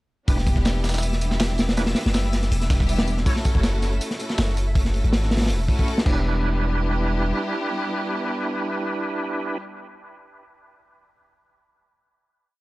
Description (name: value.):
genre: drum and bass, jungle.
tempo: 161 BPM.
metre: 4/4.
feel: straight.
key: E dorian.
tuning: A4 = 440 Hz.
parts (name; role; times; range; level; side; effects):
warm studio string section; sustained chords; 0.3-9.6 s; G3 to A4; -29 LUFS; equal; none.
bright tonewheel organ; stabs; 0.3-3.4, 6.1-9.6 s; D4 to C#5; -28 LUFS; right 2 dB; overdrive, chorus vibrato, fast rotary speaker, dub echo.
long sustained 808-style bass; bass; 0.3-7.3 s; E1 to G#1; -23 LUFS; equal; none.
crunchy breakbeat drum kit; drums; 0.3-6.1 s; crash cymbal, hi-hat, kick drum, snare drum; -22 LUFS; equal; none.
dusty soul sampler-style drum kit; drums; 0.3-4.7 s; hi-hat, snare drum, tambourine; -34 LUFS; right 1 dB; high-pass filter on perc, high-pass filter on snare, high-pass filter on hats.
twinkling granular texture; texture; 0.7-4.8 s; E5 to E6; -38 LUFS; right 1 dB; built-in reverb.
room: small room ambience.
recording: dry, gritty hardware recording, cassette tape.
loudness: -20 LUFS.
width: side -20 dB against mid.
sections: 0.3-6.2 drop; 6.2-9.2 final hit.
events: drop 0.3-6.2.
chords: 0.3 Em7; 3.3 F#m7; 6.1 Em7.